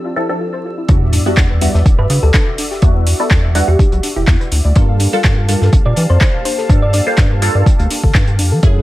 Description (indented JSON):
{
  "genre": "deep house",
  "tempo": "124 BPM",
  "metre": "4/4",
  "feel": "swing 54% on 16ths",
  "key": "unclear",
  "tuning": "A4 = 442 Hz",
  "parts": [
    { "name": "warm analog pad", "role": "sustained chords", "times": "0.0-8.8 s", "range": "F3 to A5", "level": "-28 LUFS", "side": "equal", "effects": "chorus, sidechain pumping" },
    { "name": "filtered dub chord stab", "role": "stabs", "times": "0.0-8.8 s", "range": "F3 to C5", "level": "-20 LUFS", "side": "right 1 dB", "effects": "phaser, wide subtle chorus, vintage 12-bit sampler grit, sidechain pumping, tape echo" },
    { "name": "soft string machine", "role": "texture", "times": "0.0-0.9, 8.8 s", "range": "E6", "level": "-40 LUFS", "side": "right 2 dB", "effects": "phaser, ensemble chorus, sidechain pumping" },
    { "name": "soft round pluck", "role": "arpeggios", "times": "0.1-8.8 s", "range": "C#4 to F5", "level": "-25 LUFS", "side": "left 2 dB", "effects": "chorus, sidechain pumping, tape echo" },
    { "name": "rubbery square bass", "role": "bass", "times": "0.9-8.8 s", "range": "E1 to E3", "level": "-14 LUFS", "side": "equal", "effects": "sidechain pumping" },
    { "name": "electronic kick drum", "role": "drums", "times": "0.9-8.7 s", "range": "none", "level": "-12 LUFS", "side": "equal", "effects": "overdrive" },
    { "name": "warm soul drum kit", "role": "drums", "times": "0.9-8.8 s", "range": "hi-hat, snare drum", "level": "-30 LUFS", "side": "right 3 dB", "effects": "high-pass filter on hats, high-pass filter on snare, high-pass filter on room" },
    { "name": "sub drop", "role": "sound effects", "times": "1.0-2.8 s", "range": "none", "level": "-22 LUFS", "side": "equal", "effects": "none" },
    { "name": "deep house drum kit", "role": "drums", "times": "1.1-8.5 s", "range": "handclaps, hi-hat", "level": "-20 LUFS", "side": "equal", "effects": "overdrive" },
    { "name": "thumb-piano-like synth pluck", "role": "melody", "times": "2.0-7.0 s", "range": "E4 to D5", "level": "-21 LUFS", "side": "left 1 dB", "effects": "chorus" }
  ],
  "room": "little or no reverb",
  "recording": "vinyl crackle",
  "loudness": "-11 LUFS",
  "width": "side -16 dB against mid",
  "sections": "0.9-8.8 A section",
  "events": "drop 0.9-8.8; impact 0.9-2.8",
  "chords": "0.0 Dm9; 0.9 Em9; 4.8 Gm9",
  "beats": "0.41 | 0.89 1.37 1.86 2.34 | 2.82 3.31 3.79 4.28 | 4.76 5.24 5.73 6.21 | 6.70 7.18 7.66 8.15 | 8.63"
}